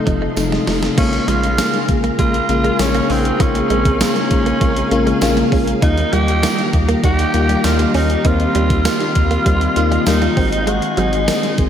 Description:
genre	1980s-style pop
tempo	99 BPM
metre	4/4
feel	straight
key	Bb minor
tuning	A4 = 437 Hz
part	raspy tenor saxophone	melody	0.0-11.6 s	C4 to G4	-21 LUFS	right 1 dB	none
part	FM electric piano	accompaniment	0.0-11.7 s	C3 to Ab4	-19 LUFS	left 3 dB	chorus
part	soft string machine	sustained chords	0.0-11.7 s	G4 to C6	-25 LUFS	right 1 dB	ensemble chorus
part	direct-recorded clean electric guitar	riff	0.1-11.5 s	F3 to Eb4	-24 LUFS	right 4 dB	analog chorus, analog delay
part	round analog bass	bass	0.1-11.7 s	F1 to Eb2	-20 LUFS	equal	none
part	gated 80s digital drum machine	drums	0.1-11.7 s	crash cymbal, hi-hat, kick drum, snare drum, tambourine	-20 LUFS	equal	gated reverb, gated reverb snare, overdrive
part	tambourine	percussion	0.4-11.4 s	none	-37 LUFS	right 6 dB	none
room	wet lush hall reverb, RT60 2.6 s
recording	dreamy mix soaked in reverb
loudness	-13 LUFS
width	side -9 dB against mid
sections	1.0-11.7 A section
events	drum fill 0.4-1.0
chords	0.0 F7; 1.0 Bbm7; 5.8 Ebadd9; 10.4 Ab7

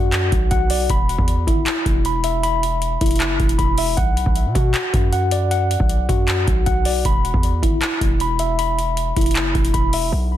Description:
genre	hip hop, trap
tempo	156 BPM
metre	4/4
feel	half-time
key	unclear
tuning	A4 = 440 Hz
part	mellow tine electric piano	arpeggios	0.0-10.4 s	E4 to B5	-21 LUFS	left 2 dB	medium stereo tremolo, low-pass filter, ping-pong delay
part	hard-hitting 808-style bass	bass	0.0-10.4 s	E1 to B2	-22 LUFS	equal	none
part	booming analog drum machine	drums	0.1-10.0 s	handclaps, hi-hat, kick drum	-20 LUFS	equal	none
room	little or no reverb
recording	dense, heavily limited modern master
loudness	-16 LUFS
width	side -12 dB against mid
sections	0.0-10.1 A section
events	none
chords	0.0 Bm; 0.9 E5; 4.0 Bm; 7.0 E5

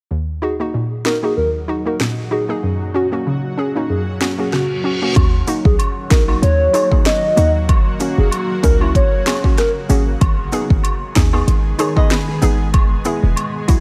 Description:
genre	dancehall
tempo	95 BPM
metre	4/4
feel	swing 56% on 16ths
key	unclear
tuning	A4 = 440 Hz
part	hollow square pluck	accompaniment	0.1-13.8 s	D#2 to G#4	-24 LUFS	equal	chorus, sidechain pumping
part	granular cloud pad	sustained chords	1.3-13.8 s	A#2 to G#4	-29 LUFS	equal	built-in reverb, sidechain pumping
part	hollow clarinet-like synth lead	melody	0.4-10.0 s	F#4 to D#5	-23 LUFS	equal	chorus, phaser, digital delay
part	afro-pop drum kit	drums	1.1-13.8 s	finger snaps, hi-hat, kick drum, rim click, snare drum	-18 LUFS	equal	none
part	reverse cymbal	sound effects	4.5-5.2 s	none	-29 LUFS	equal	none
part	short 808-style bass	bass	5.2-13.8 s	E1 to D#2	-18 LUFS	equal	none
part	woodblock and cabasa	percussion	5.2-13.8 s	none	-30 LUFS	equal	none
part	flamenco guitar	arpeggios	11.8-12.7 s	G#4 to D#5	-28 LUFS	equal	none
room	light reverb, digital ambience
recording	none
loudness	-17 LUFS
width	mono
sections	0.1-5.2 A section; 5.2-13.8 B section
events	reverse cymbal 4.5-5.2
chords	0.1 D#m; 2.6 F#; 5.2 D#m; 7.7 F#; 10.2 G#m; 12.7 E

